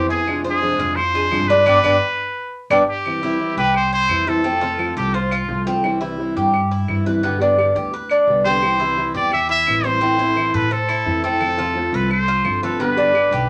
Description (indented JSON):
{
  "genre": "latin, Cuban son and guajira",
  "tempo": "172 BPM",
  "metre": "4/4",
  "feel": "straight",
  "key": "C major",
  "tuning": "A4 = 440 Hz",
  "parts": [
    { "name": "trumpet with straight mute", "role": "melody", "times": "0.0-5.7, 8.4-13.5 s", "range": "F4 to E5", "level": "-22 LUFS", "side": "equal", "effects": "none" },
    { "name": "nylon-string guitar", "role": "accompaniment", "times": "0.0-13.5 s", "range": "B2 to G4", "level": "-26 LUFS", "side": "equal", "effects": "none" },
    { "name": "Cuban tres", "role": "arpeggios", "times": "0.0-13.5 s", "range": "B3 to C5", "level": "-22 LUFS", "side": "equal", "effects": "none" },
    { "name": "upright bass", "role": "bass", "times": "0.0-13.5 s", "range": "G1 to A2", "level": "-28 LUFS", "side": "equal", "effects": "none" },
    { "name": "claves", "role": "percussion", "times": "0.3-13.3 s", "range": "none", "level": "-29 LUFS", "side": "equal", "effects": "none" }
  ],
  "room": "wet studio reverb, RT60 0.5 s",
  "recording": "none",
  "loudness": "-18 LUFS",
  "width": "mono",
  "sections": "0.0-3.1 A section; 3.1-13.5 B section",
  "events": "band accent 1.7-3.1",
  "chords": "0.3 Fm6; 1.7 G; 3.1 C; 4.5 F; 5.8 C; 7.2 G; 8.6 C; 10.0 Am; 11.4 F; 12.8 G"
}